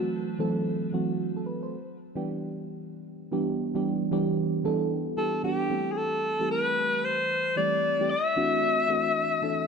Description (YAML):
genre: R&B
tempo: 113 BPM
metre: 4/4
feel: swing 62% on 16ths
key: E minor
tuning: A4 = 436 Hz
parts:
  - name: mellow FM electric piano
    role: accompaniment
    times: 0.0-9.7 s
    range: E3 to A5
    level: -28 LUFS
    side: right 2 dB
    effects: chorus, phaser
  - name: warm alto saxophone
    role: melody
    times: 5.2-9.7 s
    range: G4 to E5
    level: -26 LUFS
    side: left 2 dB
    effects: none
room: moderate lush hall reverb, RT60 2.6 s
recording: none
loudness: -25 LUFS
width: side -5 dB against mid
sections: 0.0-9.7 A section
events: FM electric piano fill 9.2-9.7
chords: 0.0 F#m7b5; 1.7 Em7; 5.7 Am7; 8.1 D9